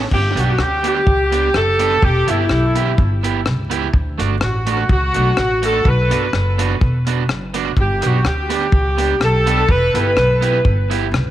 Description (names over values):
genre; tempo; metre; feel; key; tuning
ska; 125 BPM; 4/4; swing 54% on 8ths; unclear; A4 = 441 Hz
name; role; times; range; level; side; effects
electric guitar at the edge of break-up; accompaniment; 0.0-11.1 s; A3 to G4; -23 LUFS; right 9 dB; none
upright bass; bass; 0.0-11.3 s; E1 to D2; -18 LUFS; equal; none
clear horn section; melody; 0.1-10.6 s; E4 to B4; -18 LUFS; equal; tape echo
deep reggae drum kit; drums; 0.1-11.3 s; crash cymbal, hi-hat, kick drum, rim click; -20 LUFS; left 1 dB; tape echo
room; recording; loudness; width
light reverb, small room ambience; 1960s-style stereo, vinyl crackle; -14 LUFS; side -13 dB against mid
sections
0.1-11.3 A section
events
none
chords
0.1 G; 2.0 Em; 3.9 D; 5.9 Bm; 7.8 G; 9.7 Em